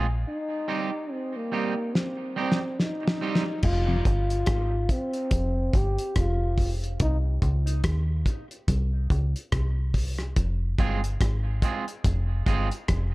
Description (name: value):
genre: dub reggae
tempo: 71 BPM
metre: 4/4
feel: swing 58% on 16ths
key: F minor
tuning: A4 = 440 Hz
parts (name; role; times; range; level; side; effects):
- electric guitar at the edge of break-up; accompaniment; 0.0-3.4, 10.8-12.7 s; G3 to Ab4; -32 LUFS; right 5 dB; dub echo
- deep dub fingered electric bass; bass; 0.0-13.1 s; F1 to Eb2; -25 LUFS; equal; none
- mellow trombone; melody; 0.3-7.2 s; Bb3 to G4; -30 LUFS; equal; dub echo
- cloth-damped thuddy drum kit; drums; 2.0-13.1 s; crash cymbal, hi-hat, kick drum, rim click, snare drum; -26 LUFS; equal; none
- mellow tonewheel organ; accompaniment; 3.9-4.0 s; F2 to C3; -29 LUFS; left 2 dB; chorus vibrato, slow rotary speaker
room: light reverb, studio reverb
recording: dark, warm production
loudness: -24 LUFS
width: side -21 dB against mid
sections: 0.0-3.6 A section; 3.6-13.1 B section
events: break 0.0; drum fill 2.0-3.6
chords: 0.3 Cm; 3.6 F5; 7.0 N.C.; 10.4 Fm